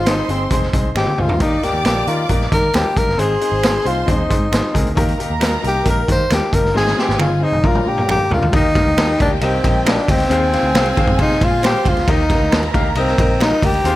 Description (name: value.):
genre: uptempo 1960s-style soul.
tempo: 135 BPM.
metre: 4/4.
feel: straight.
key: Eb major.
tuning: A4 = 440 Hz.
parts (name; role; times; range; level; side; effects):
breathy tenor saxophone; melody; 0.0-14.0 s; C4 to C5; -19 LUFS; left 1 dB; none.
warm studio violin section; second line; 0.0-14.0 s; Eb4 to D6; -26 LUFS; right 2 dB; none.
clear baby grand piano; accompaniment; 0.0-14.0 s; Ab2 to F5; -23 LUFS; left 4 dB; none.
vintage muted picked electric bass; bass; 0.0-14.0 s; F1 to Eb3; -22 LUFS; equal; none.
raw garage drum kit; drums; 0.1-14.0 s; hi-hat, kick drum, ride cymbal, snare drum, toms; -18 LUFS; equal; none.
finger snaps; percussion; 0.1-13.5 s; none; -28 LUFS; right 4 dB; none.
room: light reverb, studio reverb.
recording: none.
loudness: -14 LUFS.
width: side -15 dB against mid.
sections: 0.0-8.5 A section; 8.5-14.0 B section.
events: tenor saxophone solo 0.0-8.5; drum fill 1.0-1.4, 6.8-8.5.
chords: 0.0 Ab; 1.4 Eb; 3.2 Ab; 5.0 Eb; 6.8 Ab; 7.6 Bb; 8.5 Eb; 10.3 Fm; 12.1 Eb.